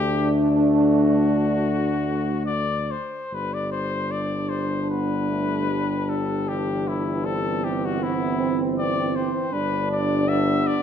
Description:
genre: classical, hymn-like piece for brass band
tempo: 64-81 BPM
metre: 4/4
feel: rubato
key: G major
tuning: A4 = 440 Hz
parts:
  - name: warm cornet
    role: melody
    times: 0.0-10.8 s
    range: E4 to E5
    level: -28 LUFS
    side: left 5 dB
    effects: none
  - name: dark French horn section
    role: second line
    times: 0.0-10.8 s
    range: C4 to D4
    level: -25 LUFS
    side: right 1 dB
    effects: none
  - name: mellow euphonium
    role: accompaniment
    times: 0.0-10.8 s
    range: E3 to D4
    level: -30 LUFS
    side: left 2 dB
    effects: none
  - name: warm trombone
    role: accompaniment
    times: 0.0-10.8 s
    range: G3 to D4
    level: -30 LUFS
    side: right 3 dB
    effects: none
  - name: mellow tuba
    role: bass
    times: 0.0-10.8 s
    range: G1 to D2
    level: -28 LUFS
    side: equal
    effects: none
room: wet recital hall reverb, RT60 1.3 s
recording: none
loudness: -21 LUFS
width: side -8 dB against mid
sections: 0.0-3.3 A section; 3.3-10.8 B section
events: none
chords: 0.0 D; 3.3 G; 6.5 C/G; 9.5 G

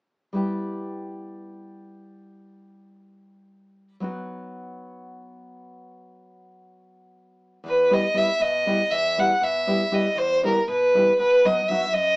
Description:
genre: balkan folk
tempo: 233 BPM (eighths)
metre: 7/8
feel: straight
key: unclear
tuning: A4 = 439 Hz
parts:
  - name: nylon-string guitar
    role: accompaniment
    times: 0.3-12.2 s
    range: E2 to G4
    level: -29 LUFS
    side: equal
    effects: none
  - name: rich fiddle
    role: melody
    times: 7.7-12.2 s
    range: A#4 to F#5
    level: -19 LUFS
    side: equal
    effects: none
room: wet studio reverb, RT60 0.6 s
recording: band playing live in one room, small speaker sound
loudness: -19 LUFS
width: side -28 dB against mid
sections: 0.4-7.6 A section; 7.6-12.2 B section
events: speeding up 0.4-12.2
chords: 0.4 Em; 4.0 B; 7.6 Em; 11.2 B

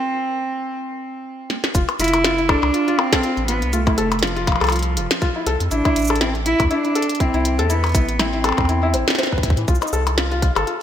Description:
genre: IDM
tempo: 121 BPM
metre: 4/4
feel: swing 56% on 16ths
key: F lydian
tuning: A4 = 440 Hz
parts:
  - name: dark cello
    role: melody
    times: 0.0-9.2 s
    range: F3 to E4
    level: -22 LUFS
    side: right 1 dB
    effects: vintage 12-bit sampler grit, ping-pong delay
  - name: glitchy drum kit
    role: drums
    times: 1.5-10.8 s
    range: hi-hat, percussion blips, shaker, snare drum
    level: -22 LUFS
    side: left 2 dB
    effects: none
  - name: felt-muted upright piano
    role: arpeggios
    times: 1.7-10.7 s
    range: E3 to F5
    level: -24 LUFS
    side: left 3 dB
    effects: ping-pong delay
  - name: round analog bass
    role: bass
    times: 1.7-10.6 s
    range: F1 to A2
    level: -22 LUFS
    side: equal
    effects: none
  - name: electronic kick drum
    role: drums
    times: 1.7-10.5 s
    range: none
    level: -20 LUFS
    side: equal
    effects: none
room: moderate lush hall reverb, RT60 1.7 s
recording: bright 1980s-style digital production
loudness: -17 LUFS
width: side -10 dB against mid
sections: 0.0-1.7 A section; 1.7-10.8 B section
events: break 0.0-1.7; drum fill 1.5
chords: 0.0 N.C.; 1.7 F; 5.7 Am; 9.7 N.C.

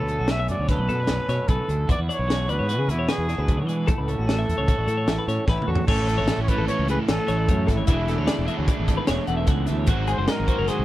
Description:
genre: math rock and midwest emo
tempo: 150 BPM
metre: 5/4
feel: straight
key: A major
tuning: A4 = 440 Hz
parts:
  - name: breathy trumpet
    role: melody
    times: 0.0-10.8 s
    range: E4 to E5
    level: -28 LUFS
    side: equal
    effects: none
  - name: twelve-string electric guitar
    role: accompaniment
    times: 0.0-10.8 s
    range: F#2 to A4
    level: -31 LUFS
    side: right 5 dB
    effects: none
  - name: twelve-string electric guitar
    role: arpeggios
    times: 0.0-10.8 s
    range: F#4 to F#5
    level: -31 LUFS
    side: left 5 dB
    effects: none
  - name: fuzz fingered electric bass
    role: bass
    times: 0.0-10.8 s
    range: E1 to E3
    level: -25 LUFS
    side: equal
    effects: overdrive
  - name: crisp fusion drum kit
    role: drums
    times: 0.1-10.8 s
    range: crash cymbal, hi-hat, kick drum, snare drum, toms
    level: -24 LUFS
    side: equal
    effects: none
  - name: overdriven electric guitar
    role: riff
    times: 5.9-10.8 s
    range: G#2 to A4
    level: -29 LUFS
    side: right 1 dB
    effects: none
room: little or no reverb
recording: none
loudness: -20 LUFS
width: side -15 dB against mid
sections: 0.0-5.9 A section; 5.9-10.8 B section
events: drum fill 5.5-5.9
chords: 0.0 Bm9; 1.9 E9; 3.9 A69; 5.9 Amaj7; 7.9 E7sus4; 9.9 G#7

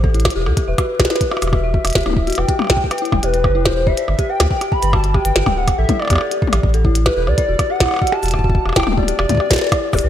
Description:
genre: IDM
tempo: 141 BPM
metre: 4/4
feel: straight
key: unclear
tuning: A4 = 441 Hz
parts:
  - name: dark detuned synth bell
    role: arpeggios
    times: 0.0-10.1 s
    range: E4 to G5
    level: -23 LUFS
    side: left 3 dB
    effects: chorus, ping-pong delay
  - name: warm sub bass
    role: bass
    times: 0.0-10.1 s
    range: D1 to E2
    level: -18 LUFS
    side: equal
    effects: none
  - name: electronic kick drum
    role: drums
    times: 0.0-10.0 s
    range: none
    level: -19 LUFS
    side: equal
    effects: overdrive, studio reverb
  - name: glitchy drum kit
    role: drums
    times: 0.1-10.1 s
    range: cabasa, hi-hat, percussion blips, snare drum, toms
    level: -20 LUFS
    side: left 1 dB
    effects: overdrive, studio reverb
  - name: warbly nostalgic lead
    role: melody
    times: 0.7-10.1 s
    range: B4 to B5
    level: -21 LUFS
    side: equal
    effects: analog chorus, digital delay
room: moderate lush hall reverb, RT60 2.2 s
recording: bright 1980s-style digital production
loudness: -14 LUFS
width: side -11 dB against mid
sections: 0.0-10.1 A section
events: none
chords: 0.0 A7(no3); 0.7 Em9; 2.4 Cmaj7 (rootless); 4.1 G; 5.8 A7sus4; 7.5 Em9; 9.2 Cmaj9 (rootless)

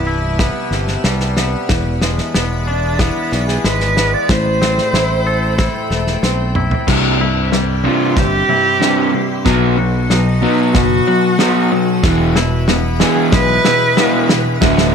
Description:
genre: post-rock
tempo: 93 BPM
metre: 4/4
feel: straight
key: C major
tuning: A4 = 436 Hz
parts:
  - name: dark cello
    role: melody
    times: 0.0-14.6 s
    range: D4 to D5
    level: -18 LUFS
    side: right 1 dB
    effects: digital delay
  - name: icy glass pad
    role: sustained chords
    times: 0.0-14.9 s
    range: F#4 to D6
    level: -26 LUFS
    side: equal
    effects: chorus, built-in reverb
  - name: twangy electric guitar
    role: arpeggios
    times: 0.0-14.9 s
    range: C2 to A4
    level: -22 LUFS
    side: left 3 dB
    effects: digital delay
  - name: fingered electric bass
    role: bass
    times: 0.0-14.9 s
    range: C1 to C2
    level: -18 LUFS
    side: equal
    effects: none
  - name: loose indie drum kit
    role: drums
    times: 0.4-14.9 s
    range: crash cymbal, kick drum, snare drum, toms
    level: -18 LUFS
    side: equal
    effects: none
  - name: raw garage guitar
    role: riff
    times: 6.9-14.9 s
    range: C2 to B3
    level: -15 LUFS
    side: equal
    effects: overdrive
room: light reverb, small room reverb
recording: none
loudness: -12 LUFS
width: side -6 dB against mid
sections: 0.0-6.9 A section; 6.9-14.9 B section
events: drum fill 6.2-6.9, 6.9-14.9; build-up 6.9-14.9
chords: 0.0 Cmaj7; 1.7 E7; 4.3 Am9; 6.9 C; 9.5 B7; 12.0 E

